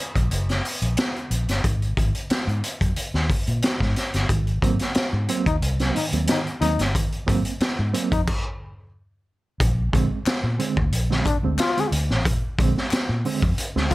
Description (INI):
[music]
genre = funk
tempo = 90 BPM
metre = 4/4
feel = straight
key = Bb mixolydian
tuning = A4 = 440 Hz
[part]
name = vintage muted fingered electric bass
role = bass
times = 0.2-13.9 s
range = Gb1 to Bb2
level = -23 LUFS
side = equal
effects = none
[part]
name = raw garage drum kit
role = drums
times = 0.2-13.9 s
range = crash cymbal, hi-hat, kick drum, snare drum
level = -24 LUFS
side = equal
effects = none
[part]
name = reed electric piano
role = stabs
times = 4.3-13.9 s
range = Ab2 to C4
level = -26 LUFS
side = right 5 dB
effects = fast tremolo
[part]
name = breathy trombone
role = second line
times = 5.5-13.9 s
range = D4 to F4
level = -26 LUFS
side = left 5 dB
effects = none
[part]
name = group handclap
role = percussion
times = 10.3-13.9 s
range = none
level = -35 LUFS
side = left 6 dB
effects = none
[sound]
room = light reverb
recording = none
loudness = -20 LUFS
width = side -18 dB against mid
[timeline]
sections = 0.0-9.6 A section; 9.6-13.9 B section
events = stop 8.3-9.6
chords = 0.0 Gb; 1.6 Ab9; 9.6 Bb9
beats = 0.30 0.97 | 1.63 2.30 2.96 3.63 | 4.29 4.96 5.62 6.28 | 6.95 7.61 8.28 8.94 | 9.60 10.27 10.93 11.59 | 12.26 12.92 13.58